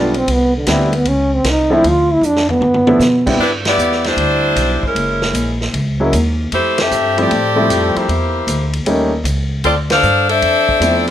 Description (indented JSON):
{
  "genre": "jazz, big band swing",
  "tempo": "154 BPM",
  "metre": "4/4",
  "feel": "swing 67% on 8ths",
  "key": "C major",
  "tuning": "A4 = 438 Hz",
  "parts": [
    { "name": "breathy trombone", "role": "melody", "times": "0.0-3.3 s", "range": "D3 to F4", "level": "-14 LUFS", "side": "right 1 dB", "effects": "none" },
    { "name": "warm concert grand piano", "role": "accompaniment", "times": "0.0-3.4, 6.0-11.0 s", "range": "F3 to F4", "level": "-17 LUFS", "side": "equal", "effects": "none" },
    { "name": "upright bass", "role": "bass", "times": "0.0-11.1 s", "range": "F#1 to B2", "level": "-19 LUFS", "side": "equal", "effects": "none" },
    { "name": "vintage drum kit", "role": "drums", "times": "0.1-11.1 s", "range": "crash cymbal, hi-hat, kick drum, ride cymbal, snare drum, toms", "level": "-22 LUFS", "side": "equal", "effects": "none" },
    { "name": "clear saxophone section", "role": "melody", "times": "3.4-11.0 s", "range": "G3 to F5", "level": "-14 LUFS", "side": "left 1 dB", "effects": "none" }
  ],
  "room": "light reverb",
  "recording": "none",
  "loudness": "-12 LUFS",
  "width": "side -11 dB against mid",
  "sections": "0.0-3.4 A section; 3.4-11.1 B section",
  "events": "trombone solo 0.0-3.4; drum fill 2.2-3.0; band accent 3.6, 6.7, 9.8",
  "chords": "0.3 Cmaj9; 1.1 A; 1.8 Dm; 2.6 G13; 3.4 Cmaj9; 5.0 F#9; 6.5 Fmaj9; 8.1 Em7b5; 8.9 Eb7#11; 9.6 Dm7"
}